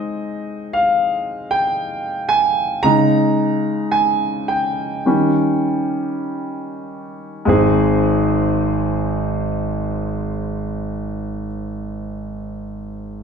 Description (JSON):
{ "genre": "pop", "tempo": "48-59 BPM", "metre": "4/4", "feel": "straight", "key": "Ab major", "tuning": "A4 = 440 Hz", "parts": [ { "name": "clear concert grand piano", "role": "accompaniment", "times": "0.0-13.2 s", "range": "Ab1 to Bb5", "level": "-17 LUFS", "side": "equal", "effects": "none" } ], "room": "wet large studio reverb, RT60 1.0 s", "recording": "band playing live in one room", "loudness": "-17 LUFS", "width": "side -6 dB against mid", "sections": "0.0-7.5 A section; 7.5-12.5 B section", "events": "slowing down 0.0-7.5; grand piano solo 0.0-7.5", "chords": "0.0 Ab; 2.8 Dbsus2; 5.1 Eb7; 7.5 Ab", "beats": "0.75 1.78 | 2.84 3.93 5.06 6.24 | 7.47 8.74 10.00 11.26" }